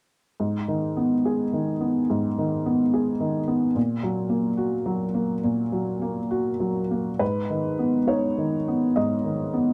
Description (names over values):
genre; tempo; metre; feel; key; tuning
neoclassical minimalist piano; 66-73 BPM; 4/4; rubato; G# minor; A4 = 440 Hz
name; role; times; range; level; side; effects
felt-muted upright piano; solo; 0.4-9.7 s; G#2 to D#5; -25 LUFS; equal; none
room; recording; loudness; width
light reverb; dry, close 1970s-style studio recording; -25 LUFS; mono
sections
0.4-7.2 A section; 7.2-9.7 B section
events
none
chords
0.4 G#m; 3.8 F#/A#; 7.2 G#m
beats
| 0.39 1.24 2.10 2.93 | 3.76 4.58 5.44 6.31 | 7.21 8.08 8.96